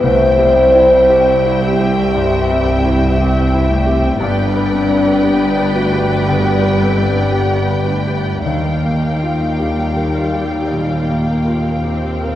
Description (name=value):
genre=cinematic, emotional film score for orchestra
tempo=52-59 BPM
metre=4/4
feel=rubato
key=unclear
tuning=A4 = 438 Hz
part: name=rich studio violin section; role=melody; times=0.0-12.4 s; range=G5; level=-24 LUFS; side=left 2 dB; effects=none
part: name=rich studio violin section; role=second line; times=0.0-12.4 s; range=D5 to E#5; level=-24 LUFS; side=left 1 dB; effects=none
part: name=warm clarinet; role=second line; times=0.0-12.4 s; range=G3 to C4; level=-26 LUFS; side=equal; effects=none
part: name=clear grand piano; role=accompaniment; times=0.0-12.4 s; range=C2 to B4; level=-22 LUFS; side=left 1 dB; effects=none
part: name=rich studio viola section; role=accompaniment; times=0.0-12.4 s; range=G3 to B4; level=-26 LUFS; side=right 1 dB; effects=none
part: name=mellow French horn section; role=sustained chords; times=0.0-11.8 s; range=D4 to C5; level=-16 LUFS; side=left 1 dB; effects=none
part: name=concert harp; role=arpeggios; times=0.0-12.4 s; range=G2 to B4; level=-26 LUFS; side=left 5 dB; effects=none
part: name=clear studio double bass section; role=bass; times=0.0-12.4 s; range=G1 to D#2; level=-20 LUFS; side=right 1 dB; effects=none
part: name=rich studio cello section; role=bass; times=0.0-12.4 s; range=C2 to G2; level=-21 LUFS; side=right 2 dB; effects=none
room=wet scoring stage reverb, RT60 2.0 s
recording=worn, warbling old tape, cassette tape, warbly pitch drift, lossy compression artefacts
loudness=-12 LUFS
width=side -12 dB against mid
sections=0.0-12.4 A section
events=none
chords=0.0 C; 4.2 G; 8.4 D#add9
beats=| 0.02 1.09 2.15 3.18 | 4.20 5.23 6.27 7.33 | 8.45 9.58 10.71 11.84